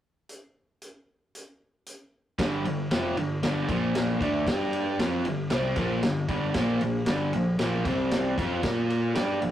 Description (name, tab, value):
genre	garage rock duo or trio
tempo	115 BPM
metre	4/4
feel	straight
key	G minor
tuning	A4 = 440 Hz
part	vintage drum kit	drums	0.3-9.5 s	hi-hat, kick drum, ride cymbal, snare drum	-30 LUFS	equal	none
part	raw garage guitar	riff	2.4-9.5 s	F2 to Bb4	-26 LUFS	equal	overdrive
part	fuzz picked electric bass	bass	2.4-9.5 s	F1 to Bb2	-36 LUFS	equal	overdrive, tube saturation
room	moderate studio reverb, RT60 0.5 s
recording	rough rehearsal-room recording, warm saturation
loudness	-24 LUFS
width	side -11 dB against mid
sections	0.3-2.4 A section; 2.4-9.5 B section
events	none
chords	0.3 N.C.; 2.4 G5; 3.7 Bb5; 4.2 Gm; 6.5 Bb5; 7.9 C5; 8.4 Bb5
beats	| 0.29 0.81 1.33 1.85 | 2.38 2.90 3.42 3.94 | 4.46 4.99 5.51 6.03 | 6.55 7.07 7.59 8.11 | 8.63 9.15